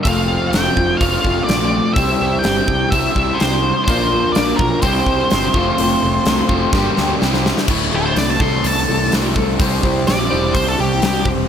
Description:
quiet-loud alternative rock; 126 BPM; 4/4; straight; A4 = 441 Hz
octave-fuzz lead guitar; melody; 0.0-11.3 s; G4 to C6; -20 LUFS; equal; distortion, slapback echo
picked acoustic archtop guitar; arpeggios; 0.0-11.5 s; F2 to C5; -21 LUFS; left 1 dB; slapback echo
crunchy overdriven guitar; riff; 0.0-11.5 s; D2 to C5; -21 LUFS; equal
fuzz picked electric bass; bass; 0.1-11.5 s; D1 to D2; -22 LUFS; equal; overdrive
huge arena drum kit; drums; 0.1-11.4 s; crash cymbal, hi-hat, kick drum, snare drum; -19 LUFS; equal
light reverb, small room ambience; -14 LUFS; side -8 dB against mid
0.0-7.7 A section; 7.7-11.5 B section
drum fill 6.7-7.7; lead electric guitar solo 7.7-11.5
0.1 F; 2.0 C; 3.9 Bb; 4.8 C; 5.5 F; 6.7 Gm; 7.2 C; 7.7 Dsus2; 8.4 Am/C; 9.6 Cadd9

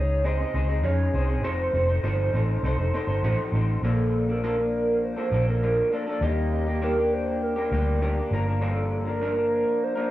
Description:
indie pop, bedroom pop; 100 BPM; 4/4; straight; Bb major; A4 = 440 Hz
warbly nostalgic lead; melody; 0.0-10.1 s; A4 to Eb5; -27 LUFS; right 1 dB; wide subtle chorus, analog delay
electric guitar through a small old amp; accompaniment; 0.0-10.1 s; G2 to C5; -28 LUFS; left 1 dB; lush chorus, vibrato effect
vintage muted fingered electric bass; bass; 0.0-9.6 s; F1 to F2; -25 LUFS; equal
light reverb; worn, warbling old tape, cassette tape, warbly pitch drift, small room ambience; -22 LUFS; side -15 dB against mid
0.0-3.8 A section; 3.8-10.1 B section
0.0 Dbmaj9; 1.4 F7; 3.8 Bbmaj7; 6.2 Ebmaj7; 8.3 Gm7

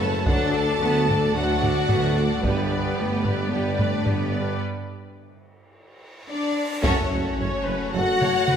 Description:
cinematic, epic orchestral film score; 110 BPM; 4/4; straight; F# phrygian; A4 = 440 Hz
bright studio violin section; melody; 0.0-8.6 s; B4 to F#5; -32 LUFS; left 3 dB
warm symphonic violin section; second line; 0.0-8.6 s; B4 to A5; -30 LUFS; left 2 dB
rich symphonic viola section; accompaniment; 0.0-8.6 s; F#3 to C#5; -32 LUFS; equal
clear French horn section; sustained chords; 0.0-8.6 s; B3 to A4; -28 LUFS; left 5 dB
rich symphonic string section; sustained chords; 0.0-8.6 s; C#4 to F#5; -32 LUFS; right 2 dB
clear tuba; bass; 0.0-8.6 s; F#1 to D2; -30 LUFS; right 1 dB
rich symphonic cello section; bass; 0.0-8.6 s; G3 to F#4; -29 LUFS; right 2 dB
rich symphonic double bass section; bass; 0.0-8.6 s; D2 to G2; -29 LUFS; right 3 dB
clear trombone section; sustained chords; 0.3-8.6 s; D3 to A3; -34 LUFS; right 2 dB
taiko ensemble; drums; 0.3-8.6 s; -27 LUFS; equal
cymbal swell and sub drop; sound effects; 5.8-8.6 s; -36 LUFS; equal
moderate scoring stage reverb, RT60 2.0 s; -20 LUFS; side -8 dB against mid
0.0-6.8 A section; 6.8-8.6 B section
break 4.6-6.8; cymbal swell 5.8-6.8; band accent 6.8-7.4; impact 6.8-8.6
0.3 D; 2.4 G; 4.6 N.C.; 6.8 F#m

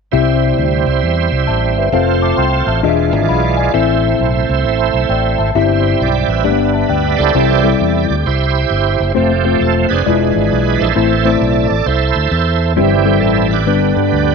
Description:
uptempo gospel; 133 BPM; 4/4; swing 65% on 8ths; C major; A4 = 441 Hz
mellow tine electric piano; accompaniment; 0.1-14.3 s; G2 to D6; -16 LUFS; left 11 dB; medium stereo tremolo
bright tonewheel organ; sustained chords; 0.1-14.3 s; D3 to G5; -15 LUFS; right 10 dB; slow rotary speaker, overdrive, chorus vibrato
fingered electric bass; bass; 0.1-14.3 s; E1 to G2; -17 LUFS; equal
moderate echo chamber reverb, RT60 2.3 s; 1960s-style stereo with parts hard left and right, faint mains hum; -11 LUFS; side -5 dB against mid
0.1-7.3 A section; 7.3-14.3 B section
tonewheel organ solo 7.3-14.3
0.1 C; 1.9 F; 2.8 E7b9; 3.7 Am; 5.5 C/G; 6.4 G; 7.3 C; 9.2 F; 10.1 E7b9; 11.0 Am; 12.8 C/G; 13.7 G

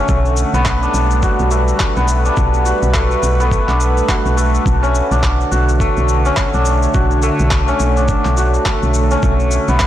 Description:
organic downtempo; 105 BPM; 4/4; swing 59% on 16ths; A4 = 440 Hz
warm analog pad; sustained chords; 0.0-9.9 s; D3 to F#5; -22 LUFS; right 3 dB; chorus, sidechain pumping
santur; arpeggios; 0.0-9.9 s; A3 to F#4; -18 LUFS; left 2 dB; digital delay
woody FM bass; bass; 0.1-9.9 s; B1; -16 LUFS; equal; transformer saturation, sidechain pumping
electronic kick drum; drums; 0.1-9.9 s; -18 LUFS; equal; overdrive
electronic shaker and handclaps; drums; 0.1-9.9 s; -24 LUFS; equal; overdrive
light reverb, digital ambience; blown-out, overdriven recording, overdrive; -12 LUFS; side -12 dB against mid
0.0-9.9 A section
0.1 Gmaj9/B; 4.7 Dmaj7/B; 9.2 Gmaj9/B

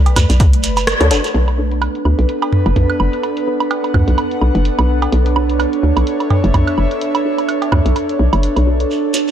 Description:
minimal techno; 127 BPM; 4/4; swing 57% on 16ths; B minor; A4 = 441 Hz
airy breathy pad; texture; 0.0-9.3 s; D4 to B5; -19 LUFS; right 2 dB; chorus, sidechain pumping
pulsing gated texture; texture; 0.0-8.9 s; A3 to D5; -26 LUFS; left 1 dB; chorus, built-in reverb, sidechain pumping
punchy analog drum machine; drums; 0.1-9.2 s; hi-hat, rim click; -23 LUFS; right 1 dB; low-pass filter on hats, low-pass filter on snare
electronic cowbell, toms and woodblock; percussion; 0.1-8.6 s; -19 LUFS; right 2 dB; overdrive, ping-pong delay
hollow knocking FM bass; bass; 0.2-8.9 s; F#1 to D2; -14 LUFS; equal; tube saturation, sidechain pumping
shekere; percussion; 0.2-1.3, 8.9-9.3 s; -25 LUFS; right 5 dB
electronic kick drum; drums; 0.4-0.5 s; -12 LUFS; equal
filtered dub chord stab; stabs; 1.0-9.2 s; D4 to C#5; -23 LUFS; left 3 dB; ensemble chorus, ping-pong delay
light reverb, digital ambience; dark, warm production; -13 LUFS; side -10 dB against mid
0.0-1.3 A section; 1.3-8.9 B section
kick drops out 0.9-1.3; band accent 0.9
0.0 Bm7

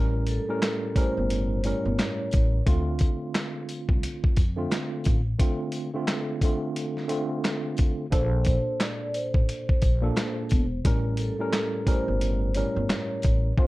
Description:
hip hop, boom-bap hip-hop; 88 BPM; 4/4; swing 61% on 16ths; D minor; A4 = 440 Hz
tine electric piano; accompaniment; 0.0-13.7 s; A2 to Bb4; -30 LUFS; right 1 dB; overdrive, fast stereo tremolo, high-pass filter, low-pass filter
upright bass; bass; 0.0-13.7 s; E1 to F2; -27 LUFS; equal
vibraphone with soft mallets; melody; 0.3-2.6, 8.1-13.7 s; A4 to D5; -32 LUFS; equal; high-pass filter, low-pass filter
dusty soul sampler-style drum kit; drums; 0.3-13.7 s; handclaps, hi-hat, kick drum, snare drum; -24 LUFS; equal
sleigh bells; percussion; 0.3-13.4 s; -47 LUFS; left 5 dB
little or no reverb; worn, warbling old tape, cassette tape, warbly pitch drift; -23 LUFS; side -19 dB against mid
0.0-13.6 A section
0.0 A7b9; 2.7 Dm7; 8.1 Bbmaj7; 10.8 A7b9

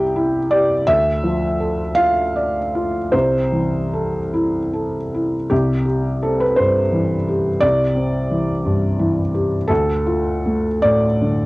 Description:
neoclassical minimalist piano; 49-59 BPM (dotted quarters); 6/8; rubato; C major; A4 = 440 Hz
felt-muted upright piano; solo; 0.0-11.5 s; C2 to G5; -16 LUFS; equal; cassette tape
moderate studio reverb, RT60 0.6 s; home recording on cassette; -16 LUFS; side -21 dB against mid
0.0-5.5 A section; 5.5-11.5 B section
0.0 C; 0.9 Dm; 3.1 Am/C; 5.5 Cadd9; 9.7 Dm

